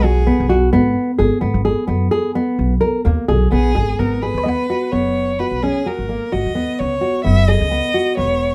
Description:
contemporary instrumental, chamber music in an uneven meter; 129 BPM; 7/4; straight; G# minor; A4 = 440 Hz
rich violin; melody; 0.0-8.5 s; G#4 to E5; -24 LUFS; equal
nylon-string guitar; arpeggios; 0.0-8.5 s; A#3 to A#4; -21 LUFS; equal
upright bass; bass; 0.0-8.5 s; E1 to G#2; -20 LUFS; equal
buff-stop harpsichord; texture; 0.0-5.0 s; B4 to F#5; -28 LUFS; equal
light reverb; -17 LUFS; mono
0.0-4.0 A section; 4.0-8.5 B section
0.0 B5; 0.7 G#madd9; 4.0 G#m11; 7.3 F#9sus4
0.28 | 0.73 1.19 1.65 2.12 2.58 3.05 3.52 | 3.99 4.46 4.93 5.40 5.86 6.33 6.79 | 7.26 7.72 8.18

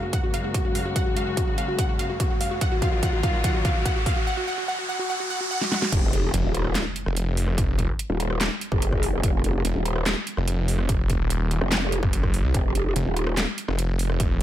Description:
heavy wobble dubstep; 145 BPM; 4/4; half-time; F phrygian; A4 = 441 Hz
wide unison pluck; melody; 0.0-5.9 s; Gb4 to Gb5; -28 LUFS; equal; ping-pong delay
dark chamber string section; sustained chords; 0.0-4.3 s; Eb2 to Gb4; -30 LUFS; left 3 dB; sidechain pumping
riser and impact; sound effects; 0.7-7.6 s; -31 LUFS; equal
dubstep drum kit; drums; 0.1-14.4 s; crash cymbal, handclaps, hi-hat, rim click, snare drum; -28 LUFS; equal
electronic kick drum; drums; 0.1-14.3 s; -24 LUFS; equal
growl bass; bass; 5.9-13.5 s; Eb1 to Gb1; -24 LUFS; equal; chorus, overdrive
snarling distorted saw bass; bass; 6.3-14.4 s; Eb1 to C2; -23 LUFS; equal; distortion, overdrive
digital ambience; -22 LUFS; side -12 dB against mid
0.0-5.9 A section; 5.9-14.4 B section
build-up 0.0-5.9; drum fill 0.0-4.3, 5.6-5.9; riser 0.7-5.9; break 4.3-5.9; drop 5.9-14.4; impact 5.9-7.6
0.0 Gbadd9; 2.6 Ebmadd9; 5.9 F5
0.13 0.55 | 0.96 1.37 1.79 2.20 | 2.61 3.03 3.44 3.85 | 4.27 4.68 5.10 5.51 | 5.92 6.34 6.75 7.17 | 7.58 7.99 8.41 8.82 | 9.23 9.65 10.06 10.48 | 10.89 11.30 11.72 12.13 | 12.54 12.96 13.37 13.79 | 14.20

